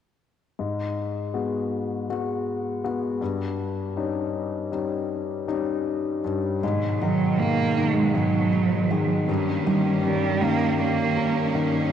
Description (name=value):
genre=pop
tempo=80 BPM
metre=4/4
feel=straight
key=G# minor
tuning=A4 = 435 Hz
part: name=warm concert grand piano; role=accompaniment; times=0.6-11.9 s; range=G2 to F#4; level=-26 LUFS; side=left 5 dB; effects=cassette tape
part: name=bright studio string section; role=sustained chords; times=6.6-11.9 s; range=G2 to C#4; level=-27 LUFS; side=right 2 dB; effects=cassette tape
part: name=nylon-string guitar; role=arpeggios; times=6.6-11.9 s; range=G#2 to A#4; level=-29 LUFS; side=right 2 dB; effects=cassette tape
part: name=warm cello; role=melody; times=7.0-11.5 s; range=F#3 to A#3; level=-24 LUFS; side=right 6 dB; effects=cassette tape
room=wet lush hall reverb, RT60 3.1 s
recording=home recording on cassette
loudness=-22 LUFS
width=side -9 dB against mid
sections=0.6-6.6 A section; 6.6-11.9 B section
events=none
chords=0.6 G#m7; 3.2 D#7/G; 6.6 G#m7; 9.3 D#7/G